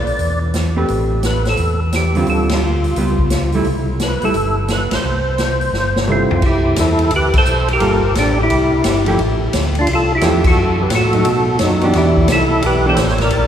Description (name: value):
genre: soul jazz organ trio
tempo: 174 BPM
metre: 4/4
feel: swing 65% on 8ths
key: C major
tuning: A4 = 436 Hz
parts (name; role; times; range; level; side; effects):
- percussive tonewheel organ; melody; 0.0-13.5 s; C4 to D5; -17 LUFS; equal; slow rotary speaker, chorus vibrato
- mellow tonewheel organ; bass; 0.0-13.5 s; G1 to B2; -18 LUFS; equal; overdrive, chorus vibrato, slow rotary speaker
- swinging big-band drum kit; drums; 0.1-13.4 s; crash cymbal, hi-hat, kick drum, ride cymbal, snare drum, toms; -20 LUFS; equal; none
- vintage hollow-body jazz guitar; accompaniment; 0.8-13.0 s; D3 to B4; -21 LUFS; right 1 dB; none
room: wet cathedral reverb, RT60 4.3 s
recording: recorded in a church or concert hall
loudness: -13 LUFS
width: side -9 dB against mid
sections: 0.0-6.4 A section; 6.4-13.5 B section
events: band accent 2.4, 4.9, 7.3, 10.4; drum fill 5.7-6.4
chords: 0.2 Em; 0.9 Am9; 2.3 Dm7; 3.0 Db7#11; 3.7 C5; 6.4 Cmaj9; 7.8 Gm9; 8.5 C; 9.2 Fmaj9; 10.6 F#madd11; 11.3 B7; 12.0 Em7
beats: 0.20 0.54 | 0.89 1.24 1.58 1.93 | 2.28 2.62 2.97 3.32 | 3.66 4.01 4.36 4.70 | 5.05 5.39 5.74 6.09 | 6.43 6.78 7.12 7.47 | 7.81 8.16 8.50 8.85 | 9.19 9.54 9.88 10.23 | 10.57 10.92 11.26 11.61 | 11.95 12.29 12.64 12.98 | 13.33